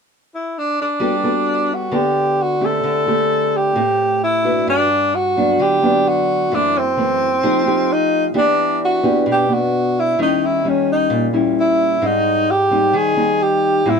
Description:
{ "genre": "bossa nova", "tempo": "131 BPM", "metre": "4/4", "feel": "straight", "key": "G major", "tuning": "A4 = 440 Hz", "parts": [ { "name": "mellow tenor saxophone", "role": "melody", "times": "0.3-14.0 s", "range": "C4 to A4", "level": "-16 LUFS", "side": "equal", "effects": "none" }, { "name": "nylon-string guitar", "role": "accompaniment", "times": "1.0-14.0 s", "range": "F#2 to B4", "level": "-18 LUFS", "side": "left 1 dB", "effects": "none" } ], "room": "light reverb", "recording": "dark, warm production", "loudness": "-14 LUFS", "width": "side -6 dB against mid", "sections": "0.0-1.0 A section; 1.0-4.7 B section; 4.7-14.0 C section", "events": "none", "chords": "0.0 N.C.; 1.0 Gmaj9; 2.8 D7sus4; 4.7 Gmaj7; 6.5 F#m7b5; 7.4 F9; 8.4 Em7; 10.2 Eb7b9; 12.0 Abmaj7" }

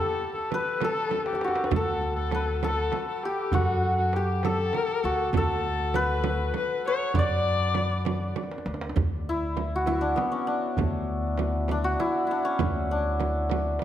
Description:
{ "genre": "Persian modal ensemble", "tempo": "66 BPM (dotted quarters)", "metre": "6/8", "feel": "straight", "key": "D dastgah mahur", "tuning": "A4 = 440 Hz", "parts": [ { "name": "santur", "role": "melody", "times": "0.0-13.8 s", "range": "B3 to D5", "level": "-28 LUFS", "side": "left 1 dB", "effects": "none" }, { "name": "rich kamancheh", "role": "second line", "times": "0.0-8.3 s", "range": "F#4 to D5", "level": "-30 LUFS", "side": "left 6 dB", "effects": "none" }, { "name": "tombak", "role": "percussion", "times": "0.4-13.8 s", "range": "none", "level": "-32 LUFS", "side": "right 2 dB", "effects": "none" }, { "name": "frame drum", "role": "percussion", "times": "0.5-13.8 s", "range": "none", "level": "-33 LUFS", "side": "right 7 dB", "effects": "none" }, { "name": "upright bass", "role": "bass", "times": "1.7-13.8 s", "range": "D2 to F#2", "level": "-29 LUFS", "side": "equal", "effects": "none" } ], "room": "moderate scoring stage reverb, RT60 1.4 s", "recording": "none", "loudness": "-24 LUFS", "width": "side -11 dB against mid", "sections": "0.0-9.0 A section; 9.0-13.8 B section", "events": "drum fill 1.1-1.7, 8.4-9.0", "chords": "none" }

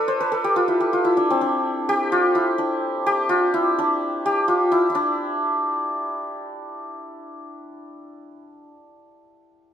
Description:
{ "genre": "indian classical", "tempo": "127 BPM", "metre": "4/4", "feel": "straight", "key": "D raga kafi", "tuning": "A4 = 440 Hz", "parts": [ { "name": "santur", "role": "solo", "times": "0.0-8.7 s", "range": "C4 to E5", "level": "-20 LUFS", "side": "equal", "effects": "none" } ], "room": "moderate studio reverb, RT60 0.6 s", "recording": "minimal, uncompressed stereo recording", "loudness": "-19 LUFS", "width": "side -9 dB against mid", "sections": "0.0-4.9 A section; 4.9-6.8 B section", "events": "speeding up 0.0-6.8", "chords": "none" }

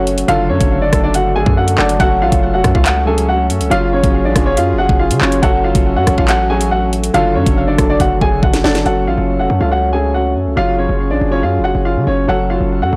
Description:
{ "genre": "hip hop, drill", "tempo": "140 BPM", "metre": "4/4", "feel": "half-time", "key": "F# harmonic minor", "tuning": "A4 = 440 Hz", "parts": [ { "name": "clear upright piano", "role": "melody", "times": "0.0-13.0 s", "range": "C#4 to G#5", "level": "-19 LUFS", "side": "equal", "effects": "low-pass filter" }, { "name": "dark concert grand piano", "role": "accompaniment", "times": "0.0-13.0 s", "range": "D3 to A4", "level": "-22 LUFS", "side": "equal", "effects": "low-pass filter" }, { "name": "bright brass ensemble", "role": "sustained chords", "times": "0.0-13.0 s", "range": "D3 to G#4", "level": "-27 LUFS", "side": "equal", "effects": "none" }, { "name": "hard-hitting 808-style bass", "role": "bass", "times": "0.0-13.0 s", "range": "E#1 to C#3", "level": "-20 LUFS", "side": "equal", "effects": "none" }, { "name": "drill drum kit", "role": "drums", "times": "0.1-9.0 s", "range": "handclaps, hi-hat, kick drum, rim click, snare drum", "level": "-18 LUFS", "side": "equal", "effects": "none" }, { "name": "soft round pluck", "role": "second line", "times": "0.3-8.8 s", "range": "E#5 to F#5", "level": "-25 LUFS", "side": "equal", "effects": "chorus, delay" } ], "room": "digital ambience", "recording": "blown-out, overdriven recording, overdrive", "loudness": "-14 LUFS", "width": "mono", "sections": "0.0-8.9 A section; 8.9-13.0 B section", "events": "drum fill 8.0-8.9", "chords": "0.3 D/F#; 2.0 F#m; 3.7 C#/F#; 5.4 F#m; 7.1 D/F#; 8.9 F#m; 10.6 C#/F#; 12.3 F#m" }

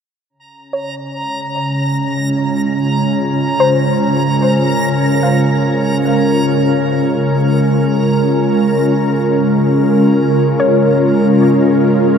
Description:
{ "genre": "ambient", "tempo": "free time", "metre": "none", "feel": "none", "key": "unclear", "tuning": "A4 = 440 Hz", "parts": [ { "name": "ethereal airy pad", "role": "sustained chords", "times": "1.0-12.2 s", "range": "Db3 to Bb4", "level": "-12 LUFS", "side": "equal", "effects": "ensemble chorus, built-in reverb" }, { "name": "organ-like drone", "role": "drone", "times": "0.7-12.2 s", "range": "Db3 to Db4", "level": "-24 LUFS", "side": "equal", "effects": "ensemble chorus, built-in reverb" }, { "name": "backwards swelling texture", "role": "texture", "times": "0.8-12.2 s", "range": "Bb5", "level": "-24 LUFS", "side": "equal", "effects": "built-in reverb" }, { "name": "soft round pluck", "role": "arpeggios", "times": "0.7-12.2 s", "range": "C5 to F5", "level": "-21 LUFS", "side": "left 3 dB", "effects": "chorus, diffuse ambient delay" } ], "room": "wet huge ambient reverb, RT60 9.3 s", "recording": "dreamy mix soaked in reverb", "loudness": "-12 LUFS", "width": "side -7 dB against mid", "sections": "0.3-12.2 A section", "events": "fade-out on synth drone 0.3-12.2; fade-out on synth texture 0.3-12.2; filter sweep on ambient pad 0.3-12.2", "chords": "0.3 Bbm7/Db" }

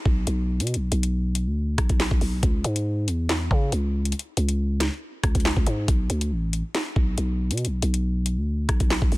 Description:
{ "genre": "hip hop, drill", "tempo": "139 BPM", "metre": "4/4", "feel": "half-time", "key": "unclear", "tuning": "A4 = 440 Hz", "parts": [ { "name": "growling 808-style bass", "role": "bass", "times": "0.1-9.2 s", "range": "A1 to C#3", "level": "-24 LUFS", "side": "equal", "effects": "none" }, { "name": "drill drum kit", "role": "drums", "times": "0.1-9.2 s", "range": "handclaps, hi-hat, kick drum, rim click, snare drum", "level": "-23 LUFS", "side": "equal", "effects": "none" } ], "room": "little or no reverb", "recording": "dense, heavily limited modern master", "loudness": "-22 LUFS", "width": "side -20 dB against mid", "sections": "0.0-9.2 A section", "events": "none", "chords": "none" }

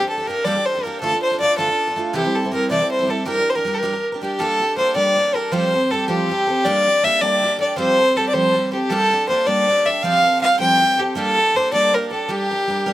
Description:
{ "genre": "celtic folk", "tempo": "106 BPM (dotted quarters)", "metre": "6/8", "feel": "straight", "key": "G dorian", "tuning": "A4 = 440 Hz", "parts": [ { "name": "warm fiddle", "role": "melody", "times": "0.0-12.9 s", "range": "G4 to G5", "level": "-17 LUFS", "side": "equal", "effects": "slapback echo" }, { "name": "picked twelve-string acoustic guitar", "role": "accompaniment", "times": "0.0-12.9 s", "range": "C3 to Bb4", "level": "-24 LUFS", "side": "right 2 dB", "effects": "slapback echo" } ], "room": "little or no reverb", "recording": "recorded outdoors, with no room sound", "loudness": "-16 LUFS", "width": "side -14 dB against mid", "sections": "0.0-4.4 A section; 4.4-12.9 B section", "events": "none", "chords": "0.0 Gmadd9; 1.0 Dm; 2.1 C6; 3.3 Gm; 4.4 Gmadd9; 5.5 Fadd9; 6.7 Gmadd9; 7.8 Fadd9; 8.9 Gmadd9; 10.0 Fadd9; 11.2 Gmadd9; 12.3 Gm" }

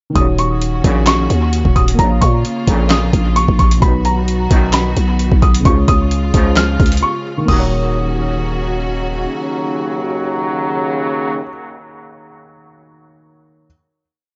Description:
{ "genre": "hip hop, trap", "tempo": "131 BPM", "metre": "4/4", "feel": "half-time", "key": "Eb minor", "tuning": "A4 = 440 Hz", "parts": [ { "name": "dark concert grand piano", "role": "accompaniment", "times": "0.1-13.7 s", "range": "B2 to F5", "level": "-26 LUFS", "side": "equal", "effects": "dub echo" }, { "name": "felt-muted upright piano", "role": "melody", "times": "0.2-8.8 s", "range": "Bb5 to F6", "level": "-22 LUFS", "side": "equal", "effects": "dub echo" }, { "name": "rich symphonic string section", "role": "sustained chords", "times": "0.2-11.4 s", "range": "Db3 to Gb4", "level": "-27 LUFS", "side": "equal", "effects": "none" }, { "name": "warm brass ensemble", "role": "stabs", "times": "0.2-11.4 s", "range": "Eb2 to Gb3", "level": "-25 LUFS", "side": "equal", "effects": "dub echo" }, { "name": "growling 808-style bass", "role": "bass", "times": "0.2-9.3 s", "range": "Eb1 to Bb2", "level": "-18 LUFS", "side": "equal", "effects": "none" }, { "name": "dusty soul sampler-style drum kit", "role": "drums", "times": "0.2-7.6 s", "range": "crash cymbal, handclaps, hi-hat, kick drum, snare drum", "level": "-17 LUFS", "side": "equal", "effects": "none" } ], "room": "small room ambience", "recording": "echo-heavy mix, nothing above 7.7 kHz", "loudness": "-15 LUFS", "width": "mono", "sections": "0.2-7.5 hook; 7.5-11.1 final chord", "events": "break 7.0-7.5", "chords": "0.2 Ebm7; 2.0 Bbm; 3.8 B; 5.7 Db; 7.5 Ebm7" }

